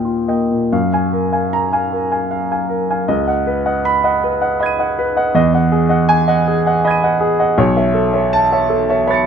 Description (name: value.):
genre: classical, impressionist solo piano.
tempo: 64-82 BPM.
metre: 3/4.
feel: rubato.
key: F# major.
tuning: A4 = 440 Hz.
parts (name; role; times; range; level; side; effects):
warm grand piano; solo; 0.0-9.3 s; B1 to D#7; -13 LUFS; right 1 dB; none.
room: light reverb.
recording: none.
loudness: -13 LUFS.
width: side -7 dB against mid.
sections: 0.7-9.3 A section.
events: none.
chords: 0.0 Ebadd9; 0.7 F#maj9; 3.1 C#9sus4; 5.4 Emaj9; 7.6 B9sus4.